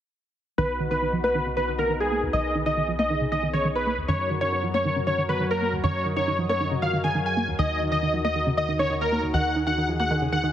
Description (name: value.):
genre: trance.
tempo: 137 BPM.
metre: 4/4.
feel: straight.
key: unclear.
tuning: A4 = 440 Hz.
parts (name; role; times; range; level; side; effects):
supersaw chords; melody; 0.6-10.5 s; Ab4 to Ab5; -26 LUFS; equal; low-pass filter, dub echo.
plucky unison lead; second line; 0.6-10.5 s; Ab4 to Ab5; -30 LUFS; left 1 dB; dub echo.
lush unison pad; sustained chords; 0.6-10.5 s; Eb3 to Eb5; -31 LUFS; left 1 dB; chorus.
tight sequenced synth; arpeggios; 0.6-10.5 s; D#2 to Bb3; -28 LUFS; right 2 dB; chorus.
tight sequencer bass; bass; 0.6-10.5 s; B1 to Gb2; -32 LUFS; equal; none.
room: moderate lush hall reverb, RT60 2.4 s.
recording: heavily compressed radio sound, multiband compression.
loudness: -22 LUFS.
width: side -10 dB against mid.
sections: 0.6-10.5 A section.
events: filter sweep on supersaw synth 0.6-10.5; filter sweep on synth arpeggio sound 0.6-10.5; filter sweep on digital synth lead 0.6-10.5.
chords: 0.6 B; 4.1 Gb; 7.6 Ebm.